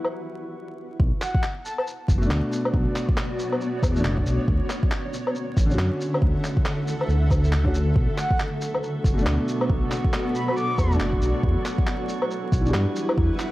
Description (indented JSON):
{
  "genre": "future garage",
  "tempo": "138 BPM",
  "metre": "4/4",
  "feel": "swing 61% on 16ths",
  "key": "B minor",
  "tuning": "A4 = 439 Hz",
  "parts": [
    { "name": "clear upright piano", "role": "accompaniment", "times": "0.0-13.5 s", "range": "B2 to F#4", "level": "-30 LUFS", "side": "equal", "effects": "sidechain pumping, tape echo" },
    { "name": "granular cloud pad", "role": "sustained chords", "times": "0.0-13.5 s", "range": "D3 to F#5", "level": "-30 LUFS", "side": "equal", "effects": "built-in reverb, vintage 12-bit sampler grit, sidechain pumping" },
    { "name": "electronic woodblock, handclaps and shaker", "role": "drums", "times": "0.0-13.5 s", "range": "none", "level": "-30 LUFS", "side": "left 1 dB", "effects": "low-pass filter on perc, studio reverb, low-pass filter on snare" },
    { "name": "drifting glass-harmonics texture", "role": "texture", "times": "0.0-0.1, 8.5-13.5 s", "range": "F#3 to F#4", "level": "-34 LUFS", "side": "right 2 dB", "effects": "chorus, built-in reverb" },
    { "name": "dark detuned saw bass", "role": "bass", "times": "1.0-13.3 s", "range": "F#1 to G2", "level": "-23 LUFS", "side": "equal", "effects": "none" },
    { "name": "electronic kick drum", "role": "drums", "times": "1.0-13.3 s", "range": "none", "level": "-23 LUFS", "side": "equal", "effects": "overdrive, studio reverb" },
    { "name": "breathy flute-like synth lead", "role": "melody", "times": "1.2-1.8, 8.2-10.9 s", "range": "F#5 to D6", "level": "-32 LUFS", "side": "equal", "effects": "analog chorus, vintage 12-bit sampler grit, tape echo" }
  ],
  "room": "light reverb, digital ambience",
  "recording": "vinyl crackle",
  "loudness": "-21 LUFS",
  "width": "side -17 dB against mid",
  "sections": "0.0-1.0 A section; 1.0-13.5 B section",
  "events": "break 0.1-1.0",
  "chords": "0.0 Em7; 1.0 Bm7; 4.5 Dmaj7; 8.0 Bm7; 11.4 Em7"
}